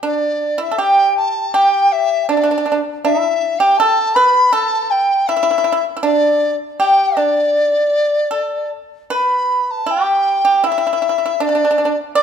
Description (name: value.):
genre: chinese traditional, Chinese chamber ensemble.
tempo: 79 BPM.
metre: 4/4.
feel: straight.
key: D zhi mode.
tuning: A4 = 443 Hz.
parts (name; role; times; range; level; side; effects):
pipa; second line; 0.0-12.2 s; D4 to D5; -18 LUFS; right 2 dB; none.
mellow large dizi; melody; 0.1-12.2 s; D5 to D6; -15 LUFS; left 1 dB; none.
room: moderate scoring stage reverb, RT60 1.9 s.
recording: close, detailed microphones.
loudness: -13 LUFS.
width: side -8 dB against mid.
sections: 0.0-12.2 A section.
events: none.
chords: none.